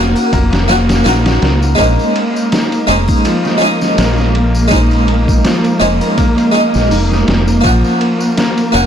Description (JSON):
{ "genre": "trip hop", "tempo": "82 BPM", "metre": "4/4", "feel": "swing 55% on 16ths", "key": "Bb minor", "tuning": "A4 = 441 Hz", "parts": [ { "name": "harpsichord", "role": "accompaniment", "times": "0.0-8.9 s", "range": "Ab3 to Gb5", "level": "-15 LUFS", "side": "equal", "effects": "tremolo, tape echo" }, { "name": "warm symphonic string section", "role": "sustained chords", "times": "0.0-8.9 s", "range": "Bb3", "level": "-18 LUFS", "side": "right 2 dB", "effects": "none" }, { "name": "felt-muted upright piano", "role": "arpeggios", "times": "0.0-8.9 s", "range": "F3 to Eb4", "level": "-19 LUFS", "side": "left 4 dB", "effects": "tape echo" }, { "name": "deep dub fingered electric bass", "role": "bass", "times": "0.0-8.9 s", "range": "F1 to Db2", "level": "-14 LUFS", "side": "equal", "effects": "tube saturation" }, { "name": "triangle and tambourine", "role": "percussion", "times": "0.2-8.7 s", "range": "none", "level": "-30 LUFS", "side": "left 3 dB", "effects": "none" }, { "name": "trip hop sampler-style drum kit", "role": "drums", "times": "0.3-8.9 s", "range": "hi-hat, kick drum, ride cymbal, snare drum", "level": "-17 LUFS", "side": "equal", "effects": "vintage 12-bit sampler grit" } ], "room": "small room ambience", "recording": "blown-out, overdriven recording, overdrive", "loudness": "-10 LUFS", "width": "side -9 dB against mid", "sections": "0.0-8.9 A section", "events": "none", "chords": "0.0 Gb; 1.8 Bbm11; 7.6 Gb", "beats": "0.33 1.06 | 1.79 2.52 3.25 3.98 | 4.72 5.45 6.18 6.91 | 7.64 8.38" }